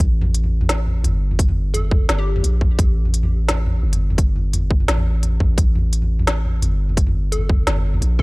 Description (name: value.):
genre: half-time drum and bass.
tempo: 172 BPM.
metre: 4/4.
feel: swing 53% on 16ths, half-time.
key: unclear.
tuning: A4 = 440 Hz.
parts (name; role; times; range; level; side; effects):
long sustained 808-style bass; bass; 0.0-8.2 s; G1 to Bb1; -19 LUFS; equal; none.
electronic kick drum; drums; 0.0-8.2 s; none; -17 LUFS; equal; overdrive.
organic electronic drum kit; drums; 0.0-8.2 s; hi-hat, snare drum, toms; -23 LUFS; equal; none.
hollow square pluck; melody; 1.7-2.4, 7.3-8.2 s; G4 to A4; -30 LUFS; left 2 dB; chorus, tape echo.
room: digital ambience.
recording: dry, gritty hardware recording.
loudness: -16 LUFS.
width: side -25 dB against mid.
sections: 0.0-8.2 A section.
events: drop 0.0-8.2.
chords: 0.0 Gsus2.